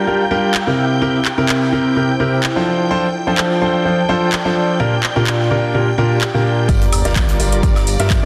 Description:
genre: piano house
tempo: 127 BPM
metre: 4/4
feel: swing 53% on 16ths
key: G dorian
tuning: A4 = 442 Hz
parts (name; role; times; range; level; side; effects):
- string machine, violins; sustained chords; 0.0-8.3 s; D5 to G6; -28 LUFS; equal; ensemble chorus, sidechain pumping
- clear grand piano; riff; 0.0-8.3 s; Bb2 to E5; -18 LUFS; equal; sidechain pumping, tape echo
- warbly tape-like pad; texture; 0.0-8.3 s; E4 to Bb5; -27 LUFS; equal; chorus, built-in reverb, sidechain pumping
- house drum kit; drums; 0.5-8.2 s; handclaps, hi-hat, shaker, woodblock; -24 LUFS; equal; soft clipping on snare
- fat analog bass; bass; 6.7-8.3 s; G1 to G2; -21 LUFS; equal; sidechain pumping
- electronic kick drum; drums; 6.7-8.2 s; none; -18 LUFS; equal; overdrive
- tight metal drum kit; drums; 6.7-8.2 s; hi-hat, snare drum, tambourine; -33 LUFS; equal; sidechain pumping on hats, high-pass filter on hats, high-pass filter on snare, sidechain pumping on perc, high-pass filter on perc, high-pass filter on room
- sub drop; sound effects; 6.7-8.3 s; none; -28 LUFS; equal; none
room: moderate lush hall reverb, RT60 2.1 s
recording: dense, heavily limited modern master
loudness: -16 LUFS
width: mono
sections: 0.0-6.7 A section; 6.7-8.3 B section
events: drop 6.7-8.3; impact 6.7-8.3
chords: 0.0 Gm7; 0.8 C7; 2.7 F6; 4.8 Bb6; 6.7 Gm7

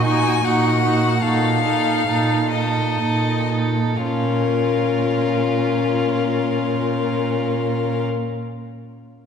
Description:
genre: classical, slow romantic movement for string quartet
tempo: 56-78 BPM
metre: 3/4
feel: rubato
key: Bb minor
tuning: A4 = 440 Hz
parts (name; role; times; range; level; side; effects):
- clear violin; melody; 0.0-8.0 s; Bb4 to Ab5; -23 LUFS; left 8 dB; none
- rich violin; second line; 0.0-8.0 s; F4 to A4; -25 LUFS; equal; none
- clear viola; accompaniment; 0.0-8.0 s; Db4 to Eb4; -24 LUFS; left 1 dB; none
- clear cello; bass; 0.0-8.0 s; Bb2; -22 LUFS; right 3 dB; none
room: wet concert hall reverb, RT60 2.5 s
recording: heard from further back in the room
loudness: -17 LUFS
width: side -7 dB against mid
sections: 0.0-4.0 A section; 4.0-9.3 B section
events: slowing down 0.0-4.0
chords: 0.0 Ebm/Bb; 4.0 Bbm

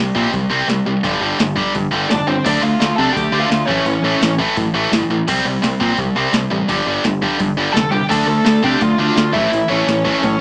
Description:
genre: punk rock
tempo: 170 BPM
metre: 4/4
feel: straight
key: D minor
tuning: A4 = 440 Hz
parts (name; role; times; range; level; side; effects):
- tight distorted guitar; riff; 0.0-10.4 s; G2 to D4; -20 LUFS; equal; distortion
- growling picked electric bass; bass; 0.0-10.3 s; F1 to C3; -24 LUFS; equal; overdrive
- booming analog drum machine; drums; 0.2-10.3 s; crash cymbal, hi-hat, kick drum, snare drum; -23 LUFS; equal; vintage 12-bit sampler grit
- bluesy overdriven lead guitar; melody; 2.1-4.3, 7.7-10.4 s; C4 to A5; -21 LUFS; equal; distortion
- raw garage guitar; riff; 8.1-10.4 s; A2 to D4; -24 LUFS; equal; overdrive, spring reverb
room: moderate small room reverb, RT60 0.5 s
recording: vinyl crackle, small speaker sound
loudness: -17 LUFS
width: mono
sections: 0.0-10.4 A section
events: none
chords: 0.0 C5; 1.0 G5; 2.5 Dm; 3.7 A; 5.3 C5; 6.7 G5; 8.1 Dm; 9.3 A

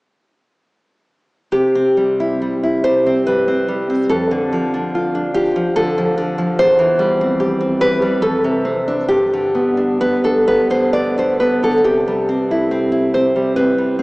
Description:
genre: romantic piece for solo classical guitar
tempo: 64-75 BPM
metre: 3/4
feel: rubato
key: C major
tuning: A4 = 441 Hz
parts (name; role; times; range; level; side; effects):
- nylon-string guitar; solo; 1.5-14.0 s; E2 to D5; -14 LUFS; equal; none
room: wet cathedral reverb, RT60 4.6 s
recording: in a vast, echoing space, small speaker sound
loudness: -14 LUFS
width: side -22 dB against mid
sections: 1.5-14.0 A section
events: none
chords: 1.5 C; 4.1 Dm/F; 6.6 C/E; 8.2 Dm7/F; 9.1 G; 11.8 C

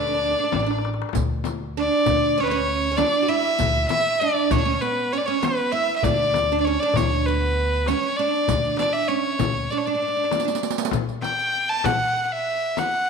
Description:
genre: Arabic maqam ensemble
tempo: 98 BPM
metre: 4/4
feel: straight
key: D maqam ajam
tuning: A4 = 438 Hz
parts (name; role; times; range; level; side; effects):
- clear violin; melody; 0.0-13.1 s; B4 to A5; -22 LUFS; left 1 dB; none
- oud; second line; 0.0-10.5 s; B3 to F#4; -26 LUFS; right 8 dB; slapback echo
- upright bass; bass; 0.0-9.6 s; A1 to D2; -26 LUFS; equal; none
- darbuka; percussion; 0.5-13.0 s; none; -31 LUFS; left 7 dB; none
- frame drum; percussion; 0.5-12.9 s; none; -30 LUFS; left 10 dB; none
- riq; percussion; 1.1-12.9 s; none; -32 LUFS; right 11 dB; none
room: wet echo chamber reverb, RT60 1.4 s, small room ambience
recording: 1960s-style stereo with parts hard left and right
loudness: -20 LUFS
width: side -5 dB against mid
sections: 0.0-1.1 A section; 1.1-10.9 B section; 10.9-13.1 C section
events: drum fill 0.5-1.1, 10.3-10.9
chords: none

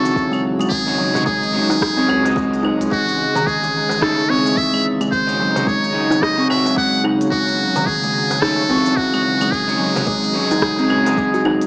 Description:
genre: organic downtempo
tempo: 109 BPM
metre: 4/4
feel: swing 59% on 16ths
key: unclear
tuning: A4 = 441 Hz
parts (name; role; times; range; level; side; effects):
- trumpet with metal mute; melody; 0.0-11.4 s; F#4 to F#5; -22 LUFS; equal; analog delay
- electric guitar at the edge of break-up; accompaniment; 0.0-11.7 s; E3 to C#6; -28 LUFS; equal; sidechain pumping, cassette tape
- warm analog pad; sustained chords; 0.0-11.7 s; C#3 to D#4; -27 LUFS; equal; chorus, vintage 12-bit sampler grit, sidechain pumping, cassette tape
- kalimba; arpeggios; 0.0-11.5 s; D#3 to F#4; -22 LUFS; equal; cassette tape, analog delay
- organic electronic drum kit; drums; 0.1-11.7 s; claves, hi-hat, rim click, shaker; -30 LUFS; equal; cassette tape
- electronic kick drum; drums; 0.2-11.3 s; none; -30 LUFS; equal; cassette tape
- round analog bass; bass; 0.7-11.6 s; D#1 to C#2; -34 LUFS; equal; sidechain pumping
- darbuka; percussion; 1.2-11.6 s; none; -32 LUFS; equal; none
room: moderate spring reverb, RT60 1.6 s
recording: home recording on cassette, small speaker sound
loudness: -18 LUFS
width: mono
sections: 0.0-11.7 A section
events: none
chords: 0.0 F#m7; 0.7 G#7sus4; 2.9 Amaj7; 5.1 G#7sus4; 7.3 F#m7; 9.5 G#7sus4

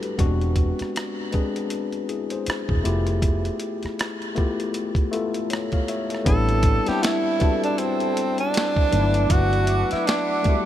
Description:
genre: R&B, neo-soul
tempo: 79 BPM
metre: 4/4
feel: swing 61% on 16ths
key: unclear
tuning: A4 = 440 Hz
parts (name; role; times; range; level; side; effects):
- tine electric piano; accompaniment; 0.0-10.7 s; F#3 to F5; -26 LUFS; left 4 dB; none
- boom bap sampler-style drum kit; drums; 0.0-10.7 s; hi-hat, kick drum, rim click, snare drum; -24 LUFS; equal; none
- vintage muted fingered electric bass; bass; 0.2-10.0 s; E1 to A1; -23 LUFS; equal; none
- breathy tenor saxophone; melody; 6.3-10.7 s; C4 to A4; -23 LUFS; right 2 dB; ping-pong delay
- hollow soft pad; sustained chords; 6.3-10.7 s; A4 to D6; -30 LUFS; right 2 dB; chorus
room: light reverb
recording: none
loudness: -20 LUFS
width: side -12 dB against mid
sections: 0.0-6.3 A section; 6.3-10.7 B section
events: none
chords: 0.2 E7b13; 2.8 Fmaj9#11; 6.3 Am9; 8.9 Gmaj7

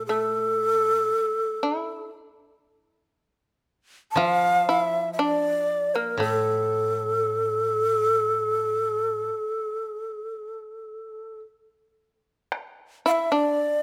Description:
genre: japanese traditional, Japanese chamber music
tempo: 58 BPM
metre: 4/4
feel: uneven beats, rubato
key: A miyako bushi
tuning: A4 = 440 Hz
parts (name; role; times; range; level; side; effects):
- breathy long shakuhachi; melody; 0.0-13.8 s; A4 to A5; -26 LUFS; equal; none
- shamisen; second line; 0.0-13.8 s; A3 to F4; -29 LUFS; equal; none
- koto; accompaniment; 0.0-9.3 s; A2 to F3; -35 LUFS; equal; none
- taiko ensemble; percussion; 12.5-12.8 s; none; -35 LUFS; equal; none
room: light reverb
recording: close, detailed microphones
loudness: -24 LUFS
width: mono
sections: 0.0-12.5 A section; 12.5-13.8 B section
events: none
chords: none

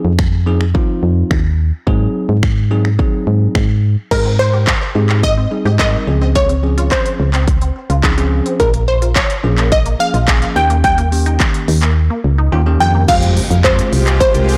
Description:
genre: dance-pop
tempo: 107 BPM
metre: 4/4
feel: straight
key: unclear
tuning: A4 = 442 Hz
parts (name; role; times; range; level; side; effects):
- bell-like tine electric piano; accompaniment; 0.0-14.6 s; Eb3 to C5; -23 LUFS; equal; sidechain pumping
- solid FM bass; bass; 0.0-14.6 s; Bb1 to Ab2; -16 LUFS; equal; sidechain pumping
- house drum kit; drums; 0.2-14.6 s; crash cymbal, finger snaps, handclaps, hi-hat, kick drum, shaker; -19 LUFS; equal; soft clipping on snare
- unison pluck; melody; 4.1-14.6 s; Bb4 to G5; -19 LUFS; equal; digital delay
- resonant blip pluck; arpeggios; 4.1-13.0 s; G3 to Ab4; -29 LUFS; equal; phaser, sidechain pumping, digital delay
- shimmering ambient pad; sustained chords; 13.6-14.6 s; Ab3 to G4; -24 LUFS; equal; chorus, built-in reverb, sidechain pumping
- impact; sound effects; 13.1-14.6 s; none; -26 LUFS; equal; none
room: light reverb, digital ambience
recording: blown-out, overdriven recording, overdrive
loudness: -14 LUFS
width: mono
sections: 0.0-4.1 A section; 4.1-13.1 B section; 13.1-14.6 C section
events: silent gap 12.0-13.1; impact 13.1-14.6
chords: 0.0 Fm7; 1.9 Ab7; 4.1 Abmaj7; 6.1 Dbmaj7; 8.6 Bbm7; 10.6 Eb7; 13.1 Fmadd9

